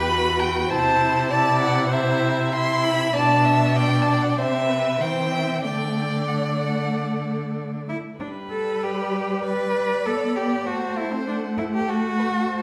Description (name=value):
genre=quick classical-period movement for string quartet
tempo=97 BPM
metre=4/4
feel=straight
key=G major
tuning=A4 = 439 Hz
part: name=rich violin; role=melody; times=0.0-12.6 s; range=E5 to C6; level=-28 LUFS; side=equal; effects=none
part: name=warm violin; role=second line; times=0.0-12.6 s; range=A4 to E5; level=-30 LUFS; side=equal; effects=none
part: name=rich viola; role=accompaniment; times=0.0-12.6 s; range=G3 to F#4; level=-29 LUFS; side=equal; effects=none
part: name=rich cello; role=bass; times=0.0-12.6 s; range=E2 to B4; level=-27 LUFS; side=equal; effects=none
room=wet recital hall reverb, RT60 1.5 s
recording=heard from further back in the room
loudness=-22 LUFS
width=mono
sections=0.0-8.2 A section; 8.2-12.6 B section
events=none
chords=0.0 Em; 0.7 Am/C; 3.2 G69/B; 4.4 C; 5.6 D; 8.2 G; 10.7 F#dim/A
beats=0.09 | 0.70 1.31 1.92 2.54 | 3.15 3.77 4.39 5.01 | 5.64 6.28 6.92 7.56 | 8.19 8.81 9.43 10.05 | 10.66 11.27 11.88 12.49